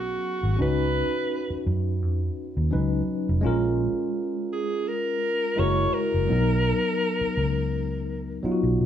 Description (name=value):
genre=lush 1970s-style soul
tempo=84 BPM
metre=4/4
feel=swing 54% on 16ths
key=unclear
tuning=A4 = 440 Hz
part: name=clear alto saxophone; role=melody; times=0.0-8.4 s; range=F#4 to C#5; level=-27 LUFS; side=equal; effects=none
part: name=bright tine electric piano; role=accompaniment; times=0.0-8.9 s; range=F#3 to B4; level=-27 LUFS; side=left 1 dB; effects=medium stereo tremolo
part: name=vintage muted fingered electric bass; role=bass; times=0.0-8.9 s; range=E#1 to B2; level=-25 LUFS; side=equal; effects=none
room=moderate large studio reverb, RT60 0.8 s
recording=band playing live in one room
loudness=-23 LUFS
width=side -10 dB against mid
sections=0.0-8.9 A section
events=none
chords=0.0 G#m11; 0.6 C#9sus4; 3.4 A#m7; 5.6 F#9; 6.3 Bmaj7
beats=| 0.59 1.30 2.02 2.73 | 3.44 4.16 4.87 5.58 | 6.30 7.01 7.72 8.44